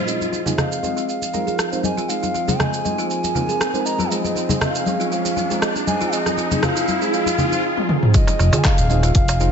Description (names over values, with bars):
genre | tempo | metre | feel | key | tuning
afro house | 119 BPM | 4/4 | swing 54% on 16ths | F minor | A4 = 440 Hz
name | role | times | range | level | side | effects
warm analog pad | sustained chords | 0.0-9.5 s | F3 to Ab4 | -28 LUFS | equal | chorus, sidechain pumping
kalimba | arpeggios | 0.0-9.5 s | F4 to Eb5 | -28 LUFS | right 2 dB | sidechain pumping, low-pass filter, tape echo
deep mellow chord stab | stabs | 0.0-9.5 s | Ab3 to Bb4 | -28 LUFS | right 2 dB | chorus, sidechain pumping, tape echo
riser | sound effects | 0.0-7.6 s | none | -27 LUFS | left 1 dB | none
bright reedy bass bansuri | melody | 0.1-9.5 s | Eb5 to Bb5 | -26 LUFS | equal | tape echo
deep house drum kit | drums | 0.1-9.5 s | handclaps, hi-hat, rim click, shaker, toms | -24 LUFS | right 1 dB | none
congas | percussion | 0.2-9.5 s | none | -26 LUFS | left 3 dB | none
electronic kick drum | drums | 8.1-9.3 s | none | -16 LUFS | equal | none
darbuka | percussion | 8.1-9.4 s | none | -25 LUFS | right 3 dB | none
smooth gliding synth bass | bass | 8.4-9.5 s | Eb1 to F1 | -17 LUFS | equal | sidechain pumping
room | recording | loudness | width
light reverb, digital ambience | nothing above 7.8 kHz | -17 LUFS | side -7 dB against mid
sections
0.1-8.1 A section; 8.1-9.5 B section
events
build-up 0.1-8.1; riser 0.1-7.6; filter sweep on kalimba 0.1-8.1; filter sweep on analog synth pad 0.1-8.1; drum fill 7.8-8.1; drop 8.1-9.5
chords
0.1 Fm7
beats
| 0.08 0.58 1.08 1.59 | 2.09 2.60 3.10 3.61 | 4.11 4.61 5.12 5.62 | 6.13 6.63 7.13 7.64 | 8.14 8.65 9.15